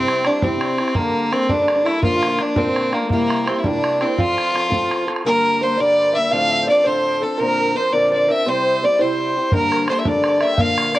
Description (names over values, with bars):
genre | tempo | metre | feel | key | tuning
celtic folk, Celtic jig | 112 BPM (dotted quarters) | 6/8 | straight | unclear | A4 = 440 Hz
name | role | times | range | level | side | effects
clear fiddle | melody | 0.0-11.0 s | Bb3 to F5 | -18 LUFS | equal | cassette tape, analog delay
accordion | second line | 0.0-11.0 s | A3 to G5 | -27 LUFS | left 2 dB | light tremolo tuning, cassette tape
open-back banjo | second line | 0.0-11.0 s | Bb3 to F5 | -28 LUFS | right 4 dB | none
fingerpicked acoustic archtop guitar | accompaniment | 0.0-11.0 s | G2 to Bb4 | -23 LUFS | left 1 dB | cassette tape
bodhran | percussion | 0.1-5.2, 9.5-11.0 s | none | -24 LUFS | right 1 dB | none
room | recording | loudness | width
light reverb, studio ambience | home recording on cassette, nothing above 10.3 kHz | -16 LUFS | side -16 dB against mid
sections
0.0-5.2 A section; 5.2-11.0 A section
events
none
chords
0.0 C; 1.0 Gmadd9; 2.0 Bb; 3.1 C7; 4.2 F; 5.2 Gm; 6.3 Dm7/A; 7.4 Bbadd9; 8.5 C; 9.5 Gmadd9